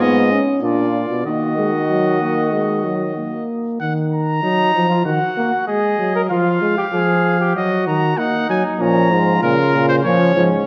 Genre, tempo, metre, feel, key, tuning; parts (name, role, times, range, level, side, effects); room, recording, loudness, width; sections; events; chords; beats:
classical, imitative canzona for brass ensemble; 96 BPM; 4/4; straight; Eb minor; A4 = 440 Hz
clear trumpet; melody; 0.0-10.4 s; Bb4 to Bb5; -24 LUFS; equal
mellow flugelhorn; second line; 0.0-10.7 s; Db4 to Bb4; -24 LUFS; equal
mellow trombone; accompaniment; 0.0-10.5 s; Db3 to D4; -21 LUFS; equal
clear euphonium; bass; 0.0-3.5, 8.8-10.7 s; Ab2 to Eb3; -23 LUFS; equal
wet recital hall reverb, RT60 1.5 s; dark, warm production, nothing above 7.5 kHz; -17 LUFS; mono
0.0-3.8 A section; 3.8-10.7 B section
0.0 Fdim/Ab; 0.6 Bb; 1.3 Ebm; 6.3 Fm; 7.6 Ebm; 8.8 Bbm
0.00 0.63 | 1.26 1.89 2.53 3.17 | 3.80 4.43 5.05 5.68 | 6.30 6.93 7.55 8.18 | 8.80 9.42 10.04